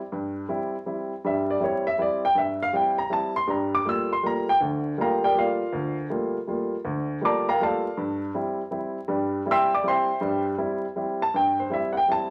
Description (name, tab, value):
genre	jazz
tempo	160 BPM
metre	3/4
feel	swing 66% on 8ths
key	unclear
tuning	A4 = 441 Hz
part	warm upright piano	solo	0.0-12.3 s	D2 to E6	-25 LUFS	equal	none
room	wet studio reverb, RT60 0.8 s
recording	vinyl crackle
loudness	-25 LUFS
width	mono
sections	0.0-12.3 A section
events	none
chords	0.0 C/G; 3.5 Gm9; 8.0 C/G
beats	| 0.12 0.49 0.87 | 1.24 1.61 1.99 | 2.36 2.73 3.11 | 3.48 3.86 4.23 | 4.61 4.98 5.35 | 5.73 6.10 6.48 | 6.85 7.23 7.60 | 7.97 8.35 8.72 | 9.10 9.47 9.84 | 10.22 10.59 10.96 | 11.34 11.71 12.08